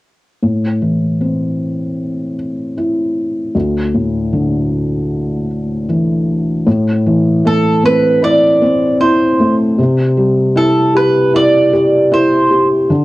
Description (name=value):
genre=pop ballad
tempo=77 BPM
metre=4/4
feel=straight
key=A minor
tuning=A4 = 440 Hz
part: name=felt-muted upright piano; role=accompaniment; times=0.4-13.0 s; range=D2 to G4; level=-12 LUFS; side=left 1 dB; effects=cassette tape
part: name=mandolin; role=melody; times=7.5-12.7 s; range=A4 to D5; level=-13 LUFS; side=right 2 dB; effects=cassette tape
room=light reverb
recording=home recording on cassette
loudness=-11 LUFS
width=side -18 dB against mid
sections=0.4-6.7 A section; 6.7-13.0 B section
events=none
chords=0.4 Am; 3.5 Dsus2; 6.7 Am; 9.8 C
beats=| 0.43 1.21 1.99 2.77 | 3.55 4.33 5.11 5.88 | 6.66 7.44 8.22 9.00 | 9.78 10.56 11.34 12.12 | 12.90